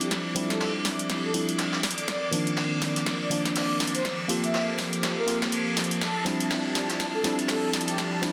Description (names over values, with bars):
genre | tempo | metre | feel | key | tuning
deep house | 122 BPM | 4/4 | swing 59% on 16ths | D minor | A4 = 439 Hz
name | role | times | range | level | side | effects
mellow horn-like synth lead | melody | 0.0-8.0 s | G4 to E5 | -36 LUFS | equal | chorus, delay
hollow soft pad | sustained chords | 0.0-8.3 s | Eb3 to D5 | -37 LUFS | equal | ensemble chorus
percussive organ stab | stabs | 0.0-8.3 s | Eb3 to A4 | -32 LUFS | equal | chorus
deep house drum kit | drums | 0.0-8.3 s | hi-hat, snare drum | -32 LUFS | equal | overdrive, high-pass filter on hats, high-pass filter on snare, high-pass filter on room
string machine, violins | texture | 0.0-8.3 s | A5 to D6 | -40 LUFS | equal | ensemble chorus
vintage brush drum kit | drums | 0.1-8.3 s | hi-hat, ride cymbal, snare drum | -35 LUFS | equal | high-pass filter on cymbals, high-pass filter on hats, high-pass filter on snare, high-pass filter on room
riser | sound effects | 7.7-8.3 s | none | -50 LUFS | equal | none
room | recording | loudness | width
moderate echo chamber reverb, RT60 1.5 s, small room ambience | dense, heavily limited modern master | -27 LUFS | mono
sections
0.0-8.3 A section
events
build-up 0.0-8.3; drum fill 0.0-8.3; filter sweep on analog synth pad 0.0-8.3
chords
0.0 Dm11; 1.8 Cm11; 4.0 Gm11; 6.0 Dm11